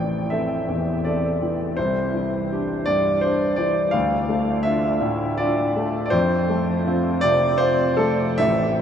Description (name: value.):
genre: neoclassical minimalist piano.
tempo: 82 BPM.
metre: 3/4.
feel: rubato.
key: unclear.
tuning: A4 = 441 Hz.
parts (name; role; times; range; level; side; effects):
warm concert grand piano; solo; 0.0-8.8 s; A1 to G5; -19 LUFS; equal; none.
room: wet huge ambient reverb, RT60 8.1 s.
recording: in a vast, echoing space.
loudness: -19 LUFS.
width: side -8 dB against mid.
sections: 0.0-8.8 A section.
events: none.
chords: 0.0 Am7; 1.8 Cadd9; 3.9 Dm; 6.1 F.